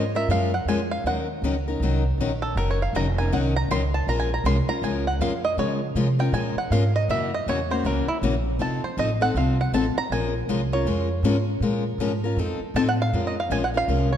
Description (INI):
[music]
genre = acoustic string swing (jazz manouche)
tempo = 159 BPM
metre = 4/4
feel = swing 61% on 8ths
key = Bb minor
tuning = A4 = 440 Hz
[part]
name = bluegrass banjo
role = melody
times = 0.0-14.2 s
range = Fb4 to C6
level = -27 LUFS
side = right 3 dB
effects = none
[part]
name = picked steel-string acoustic guitar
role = accompaniment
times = 0.0-14.1 s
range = Db3 to Bb4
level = -25 LUFS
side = left 4 dB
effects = none
[part]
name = upright bass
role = bass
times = 0.0-14.2 s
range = F1 to Db3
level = -25 LUFS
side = right 1 dB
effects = none
[sound]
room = moderate concert hall reverb, RT60 1.9 s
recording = dark, warm production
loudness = -21 LUFS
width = side -9 dB against mid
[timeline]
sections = 0.0-13.1 A section; 13.1-14.2 B section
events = five-string banjo solo 0.0-13.1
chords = 0.0 Bbm7; 1.0 Ebm9; 4.1 Bbm9; 7.1 Gb7; 8.6 F7; 10.1 Bbm9; 12.4 F7; 13.1 Bbm9